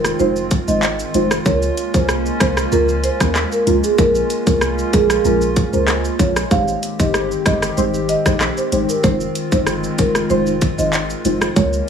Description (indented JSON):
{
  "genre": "dancehall",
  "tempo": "95 BPM",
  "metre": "4/4",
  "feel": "straight",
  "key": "unclear",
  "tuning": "A4 = 441 Hz",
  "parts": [
    { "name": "deep mellow chord stab", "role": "accompaniment", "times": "0.0-11.8 s", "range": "Ab3 to C5", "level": "-20 LUFS", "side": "equal", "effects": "chorus, phaser, sidechain pumping" },
    { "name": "hollow soft pad", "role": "sustained chords", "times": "0.0-11.9 s", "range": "Eb3 to G4", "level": "-24 LUFS", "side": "equal", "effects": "chorus" },
    { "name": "warm 808-style bass", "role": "bass", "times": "0.0-11.8 s", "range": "F1 to Eb2", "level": "-24 LUFS", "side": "equal", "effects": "none" },
    { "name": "island pop drum kit", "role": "drums", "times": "0.0-11.9 s", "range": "handclaps, hi-hat, kick drum, rim click, shaker", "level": "-19 LUFS", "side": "equal", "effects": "overdrive" },
    { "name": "marimba with soft mallets", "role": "melody", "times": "0.2-11.7 s", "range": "Ab4 to F5", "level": "-20 LUFS", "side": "right 2 dB", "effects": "digital delay" }
  ],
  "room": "light reverb, digital ambience",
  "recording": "small room ambience",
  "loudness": "-14 LUFS",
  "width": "side -7 dB against mid",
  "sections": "0.0-11.9 A section",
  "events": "none",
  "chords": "0.0 Fm7; 1.5 Db6; 4.0 Bbm7; 6.5 Abmaj7; 9.0 Fm7"
}